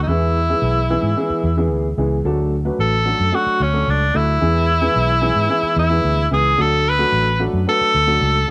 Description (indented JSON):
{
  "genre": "uptempo 1960s-style soul",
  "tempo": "111 BPM",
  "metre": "4/4",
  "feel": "straight",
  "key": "unclear",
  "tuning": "A4 = 440 Hz",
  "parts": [
    { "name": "bright tenor saxophone", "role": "melody", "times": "0.0-8.5 s", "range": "C#4 to B4", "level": "-20 LUFS", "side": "equal", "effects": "none" },
    { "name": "vintage muted fingered electric bass", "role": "bass", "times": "0.0-8.4 s", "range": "A1 to G#2", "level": "-22 LUFS", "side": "equal", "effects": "none" },
    { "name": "dark upright piano", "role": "accompaniment", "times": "0.1-8.5 s", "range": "E3 to B4", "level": "-25 LUFS", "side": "equal", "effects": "none" }
  ],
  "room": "light reverb",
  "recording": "none",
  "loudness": "-17 LUFS",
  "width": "mono",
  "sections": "0.0-8.5 A section",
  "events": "none",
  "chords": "0.1 E; 2.2 D; 4.4 E; 6.6 D"
}